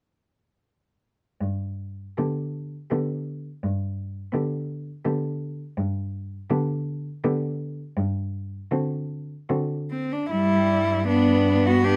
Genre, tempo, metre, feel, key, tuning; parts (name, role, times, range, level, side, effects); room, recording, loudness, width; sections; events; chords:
classical, lyrical piece for cello ensemble; 71-86 BPM; 3/4; rubato; G major; A4 = 440 Hz
rich cello; bass; 1.4-12.0 s; G2; -29 LUFS; equal
rich cello; melody; 2.2-12.0 s; C4 to G4; -28 LUFS; equal
clear cello; second line; 2.2-12.0 s; G3 to D4; -31 LUFS; equal
rich cello; accompaniment; 2.2-12.0 s; D3 to B3; -29 LUFS; equal
light reverb; -26 LUFS; mono
1.4-10.3 A section; 10.3-12.0 B section
1.4 G